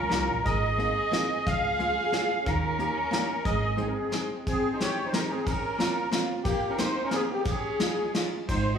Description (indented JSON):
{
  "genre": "musette waltz",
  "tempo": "179 BPM",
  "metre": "3/4",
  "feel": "swing 54% on 8ths, rubato",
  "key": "Ab major",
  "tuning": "A4 = 444 Hz",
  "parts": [
    { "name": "musette accordion", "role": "melody", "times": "0.0-8.8 s", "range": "G4 to F5", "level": "-28 LUFS", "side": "equal", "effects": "none" },
    { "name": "dark violin", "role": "second line", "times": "0.0-8.8 s", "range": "Bb3 to Ab4", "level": "-34 LUFS", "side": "right 2 dB", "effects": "none" },
    { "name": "upright bass", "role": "bass", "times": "0.0-3.9, 8.5-8.8 s", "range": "Ab1 to Eb2", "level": "-31 LUFS", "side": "right 1 dB", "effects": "none" },
    { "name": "archtop guitar, miked and amplified", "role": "accompaniment", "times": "0.1-8.3 s", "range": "G3 to Ab4", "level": "-33 LUFS", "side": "left 1 dB", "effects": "none" },
    { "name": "soft brush drum kit", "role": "drums", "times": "0.1-8.6 s", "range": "hi-hat, kick drum, ride cymbal, snare drum", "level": "-32 LUFS", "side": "equal", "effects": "none" }
  ],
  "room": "wet recital hall reverb, RT60 1.4 s",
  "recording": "heard from further back in the room, studio ambience",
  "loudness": "-25 LUFS",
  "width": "side -7 dB against mid",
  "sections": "0.0-4.5 A section; 4.5-8.8 B section",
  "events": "none",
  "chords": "0.5 Abadd9; 1.5 Db; 2.5 Eb7; 3.4 Ab; 4.5 Abmaj7; 5.5 Bbmadd9; 6.5 Eb6; 7.5 Dbadd9"
}